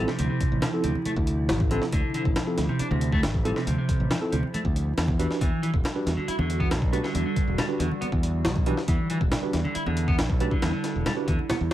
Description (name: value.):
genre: breakbeat, breaks.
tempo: 138 BPM.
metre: 4/4.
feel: straight.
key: unclear.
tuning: A4 = 436 Hz.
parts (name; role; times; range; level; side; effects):
warbly tape-like pad; sustained chords; 0.1-11.7 s; C3 to F#4; -32 LUFS; right 2 dB; chorus, built-in reverb, phaser, sidechain pumping.
mellow tine electric piano; stabs; 0.0-11.3 s; C4 to B4; -32 LUFS; right 2 dB; medium stereo tremolo, vintage 12-bit sampler grit, dub echo.
modern bright fingered electric bass; bass; 0.0-11.7 s; E1 to E2; -27 LUFS; equal; tube saturation.
clean electric guitar; riff; 0.1-11.7 s; C3 to E4; -30 LUFS; equal; overdrive, dub echo.
breakbeat sampler-style drum kit; drums; 0.1-11.7 s; hi-hat, kick drum, snare drum; -27 LUFS; equal; none.
congas; percussion; 0.6-11.6 s; none; -34 LUFS; right 1 dB; none.
room: digital ambience.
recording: vinyl crackle, faint mains hum.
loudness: -23 LUFS.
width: side -13 dB against mid.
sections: 0.0-11.7 A section.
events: none.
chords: 0.0 Dm9; 5.2 Em9.